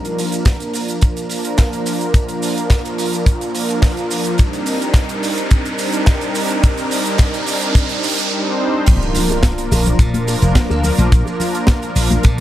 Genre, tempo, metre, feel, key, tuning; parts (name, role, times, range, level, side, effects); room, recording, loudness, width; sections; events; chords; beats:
nu-disco, nu disco; 107 BPM; 4/4; straight; Bb major; A4 = 440 Hz
warm analog pad; accompaniment; 0.0-12.4 s; F3 to C5; -20 LUFS; equal; chorus, sidechain pumping, analog delay
tight funk drum kit; drums; 0.0-12.4 s; crash cymbal, hi-hat, shaker, snare drum; -24 LUFS; right 3 dB; high-pass filter on hats, high-pass filter on cymbals, high-pass filter on snare, high-pass filter on perc, high-pass filter on room
riser and impact; sound effects; 1.8-11.1 s; -25 LUFS; right 1 dB
kick drum; drums; 0.5-12.4 s; -12 LUFS; equal
slap bass; bass; 8.9-12.4 s; F1 to Bb2; -16 LUFS; equal; sidechain pumping
cabasa, congas and bongos; percussion; 8.9-12.4 s; -24 LUFS; left 3 dB
light reverb; -14 LUFS; side -13 dB against mid
0.0-8.9 A section; 8.9-12.4 B section
build-up 0.0-8.9; riser 1.8-8.3; drop 8.9-12.4; impact 8.9-11.1
0.0 Bb; 4.4 Cm7; 8.9 Bb
0.46 1.02 1.58 | 2.15 2.71 3.27 3.83 | 4.39 4.95 5.51 6.07 | 6.63 7.19 7.75 8.31 | 8.88 9.44 10.00 10.56 | 11.12 11.68 12.24